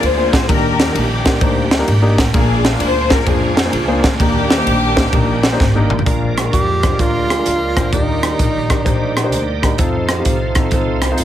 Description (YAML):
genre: uptempo gospel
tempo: 129 BPM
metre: 4/4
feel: swing 66% on 8ths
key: Eb major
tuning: A4 = 437 Hz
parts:
  - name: dark studio string section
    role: melody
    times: 0.0-5.6 s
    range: Bb3 to C5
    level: -19 LUFS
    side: left 2 dB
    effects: none
  - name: warm concert grand piano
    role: accompaniment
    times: 0.0-11.2 s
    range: Bb2 to C5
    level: -20 LUFS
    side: left 1 dB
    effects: none
  - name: bright tonewheel organ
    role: sustained chords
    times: 0.0-11.2 s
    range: Eb3 to D5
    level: -26 LUFS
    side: right 3 dB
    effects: slow rotary speaker, overdrive, chorus vibrato
  - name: upright bass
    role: bass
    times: 0.0-11.2 s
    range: Ab1 to F2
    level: -20 LUFS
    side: equal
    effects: none
  - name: crisp fusion drum kit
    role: drums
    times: 0.0-11.2 s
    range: hi-hat, kick drum, ride cymbal, rim click, snare drum, toms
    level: -16 LUFS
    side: equal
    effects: none
  - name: dark French horn section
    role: sustained chords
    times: 6.0-11.2 s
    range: Ab3 to D5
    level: -26 LUFS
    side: right 3 dB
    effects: none
  - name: breathy tenor saxophone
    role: melody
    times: 6.5-9.6 s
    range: Eb4 to G4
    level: -20 LUFS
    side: right 2 dB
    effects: tape echo
room: light reverb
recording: heavily compressed radio sound, multiband compression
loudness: -13 LUFS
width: side -11 dB against mid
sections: 0.0-6.1 A section; 6.1-11.2 B section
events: drum fill 5.6-6.1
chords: 0.5 Ebmaj7; 2.3 Bb7; 4.2 Ebmaj7; 6.1 Bb7; 7.9 Ebmaj7; 9.8 F7